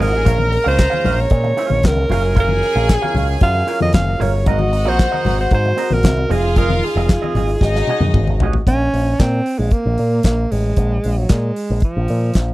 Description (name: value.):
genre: disco.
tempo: 114 BPM.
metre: 4/4.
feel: straight.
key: Bb minor.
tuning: A4 = 437 Hz.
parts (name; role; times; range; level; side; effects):
breathy alto saxophone; melody; 0.0-12.5 s; F3 to F5; -20 LUFS; right 2 dB; tape echo.
clear studio string section; second line; 0.0-8.4 s; Eb4 to Bb5; -25 LUFS; left 2 dB; none.
electric guitar with an envelope filter; accompaniment; 0.0-8.6 s; C4 to F5; -25 LUFS; right 8 dB; none.
warm French horn section; sustained chords; 0.0-8.7 s; Gb3 to Bb4; -28 LUFS; left 1 dB; none.
picked electric bass with an envelope filter; bass; 0.0-12.5 s; F1 to Bb2; -18 LUFS; equal; none.
damped 70s drum kit; drums; 0.0-12.5 s; handclaps, hi-hat, kick drum, snare drum, toms; -15 LUFS; equal; none.
congas; percussion; 0.0-8.5 s; none; -25 LUFS; left 4 dB; none.
room: little or no reverb.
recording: dry, close 1970s-style studio recording.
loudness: -14 LUFS.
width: side -17 dB against mid.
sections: 0.0-8.7 A section; 8.7-12.5 B section.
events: drum fill 7.6-8.7.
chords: 0.3 Bbm7; 2.1 Gbmaj7; 4.5 Ab9; 6.3 Fm7; 7.6 Ab7sus4; 8.7 Bb7(no3).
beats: | 0.26 0.79 1.31 1.84 | 2.36 2.89 3.41 3.94 | 4.46 4.99 5.51 6.04 | 6.56 7.09 7.61 8.14 | 8.67 9.19 9.72 10.25 | 10.77 11.30 11.83 12.36.